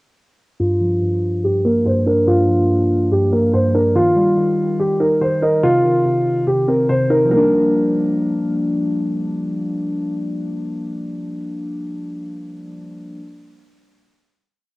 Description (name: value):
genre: hip hop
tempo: 143 BPM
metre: 4/4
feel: half-time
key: G minor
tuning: A4 = 441 Hz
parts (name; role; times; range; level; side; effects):
- dark concert grand piano; melody; 0.6-8.5 s; F4 to C5; -16 LUFS; equal; low-pass filter
- muted felt-like synth keys; accompaniment; 0.6-13.2 s; G2 to Eb5; -19 LUFS; equal; chorus, low-pass filter, cassette tape
room: light reverb, studio ambience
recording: home recording on cassette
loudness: -15 LUFS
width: side -21 dB against mid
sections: 0.6-7.3 breakdown; 7.3-10.7 final chord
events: filter sweep 0.6-7.3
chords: 0.6 Gm7; 4.0 Eb; 5.6 Cm; 7.3 Gm7